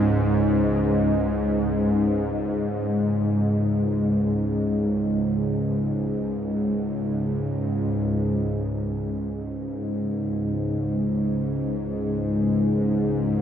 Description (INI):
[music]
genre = ambient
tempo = free time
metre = none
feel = none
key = unclear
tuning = A4 = 439 Hz
[part]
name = bowed-like drone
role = solo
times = 0.0-13.4 s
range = C#2 to G#2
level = -22 LUFS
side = equal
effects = built-in reverb
[sound]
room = wet huge ambient reverb, RT60 8.4 s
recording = dark, warm production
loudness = -22 LUFS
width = side -9 dB against mid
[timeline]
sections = 0.0-8.1 A section; 8.1-13.4 B section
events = none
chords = 0.0 C#5